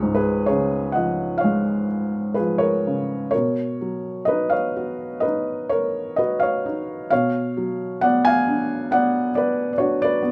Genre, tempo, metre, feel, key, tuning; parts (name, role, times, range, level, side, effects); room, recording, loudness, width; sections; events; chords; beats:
classical, lyrical solo piano; 62-69 BPM; 4/4; rubato; A4 = 440 Hz
felt-muted upright piano; solo; 0.0-10.3 s; C#2 to G#5; -22 LUFS; equal
moderate studio reverb, RT60 0.5 s; -22 LUFS; mono
0.0-10.3 A section
0.0 C#; 3.3 Bmaj7; 7.1 Bmadd9
0.47 1.41 2.37 | 3.33 4.28 5.24 6.18 | 7.11 8.02 8.91 9.78